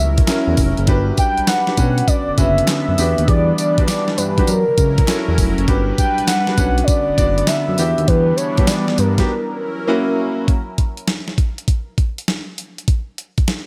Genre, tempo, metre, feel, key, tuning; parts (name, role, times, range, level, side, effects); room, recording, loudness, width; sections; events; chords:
R&B, new jack swing; 100 BPM; 4/4; swing 67% on 16ths; A4 = 440 Hz
warm velvety synth lead; melody; 0.0-9.9 s; A#4 to G5; -23 LUFS; equal; chorus, tape echo
phased analog pad; sustained chords; 0.0-10.5 s; D3 to B4; -26 LUFS; equal; phaser, chorus
smooth synth bass; bass; 0.0-9.2 s; E#1 to G2; -21 LUFS; equal
crisp 8-bit digital drum machine; drums; 0.2-13.7 s; hi-hat, kick drum, snare drum, tambourine; -20 LUFS; equal
clear grand piano; accompaniment; 0.3-10.5 s; A#3 to D5; -24 LUFS; equal
group handclap; percussion; 0.3-8.9 s; -34 LUFS; equal
light reverb; -17 LUFS; mono
0.0-10.5 A section; 10.5-13.7 B section
break 9.3-10.5
0.0 F#7; 0.9 Gmaj7; 1.8 Bmadd9; 3.0 Em7; 4.5 F#7; 5.7 Gmaj7; 6.6 Bmadd9; 7.8 Em7; 9.3 F#7; 10.5 N.C.